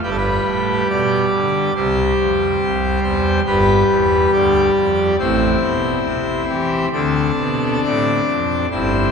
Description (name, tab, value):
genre	classical, chorale-style piece for pipe organ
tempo	70 BPM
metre	4/4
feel	rubato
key	unclear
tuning	A4 = 439 Hz
part	pipe organ, full organ	solo	0.0-9.1 s	G1 to D5	-15 LUFS	equal	none
room	wet cathedral reverb, RT60 5.8 s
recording	minimal, uncompressed stereo recording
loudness	-15 LUFS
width	side -6 dB against mid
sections	0.0-9.1 A section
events	none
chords	0.0 G; 1.8 C; 3.5 G7; 5.2 Am; 6.9 Dm7